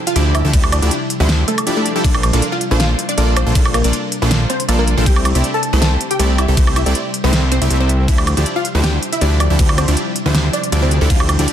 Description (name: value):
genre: future bass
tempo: 159 BPM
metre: 4/4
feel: swing 53% on 16ths, half-time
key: D minor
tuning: A4 = 439 Hz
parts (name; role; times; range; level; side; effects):
- ethereal airy pad; sustained chords; 0.0-11.5 s; C3 to G4; -27 LUFS; left 1 dB; ensemble chorus, built-in reverb, sidechain pumping
- wide unison pluck; melody; 0.1-11.3 s; A3 to A5; -23 LUFS; equal; analog chorus, sidechain pumping, dub echo
- pop drum kit; drums; 0.1-11.5 s; crash cymbal, hi-hat, snare drum, woodblock; -21 LUFS; right 1 dB; none
- supersaw stab; riff; 0.2-11.5 s; F3 to E5; -20 LUFS; equal; sidechain pumping, ping-pong delay
- fat analog bass; bass; 0.2-11.5 s; Bb1 to D2; -15 LUFS; equal; sidechain pumping
- electronic kick drum; drums; 0.5-11.2 s; none; -15 LUFS; equal; none
room: light reverb, digital ambience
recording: dense, heavily limited modern master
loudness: -13 LUFS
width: side -10 dB against mid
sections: 0.0-11.5 A section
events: none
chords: 0.0 Dm11; 2.0 Bbmaj9; 5.1 Am7/C; 8.1 Dm11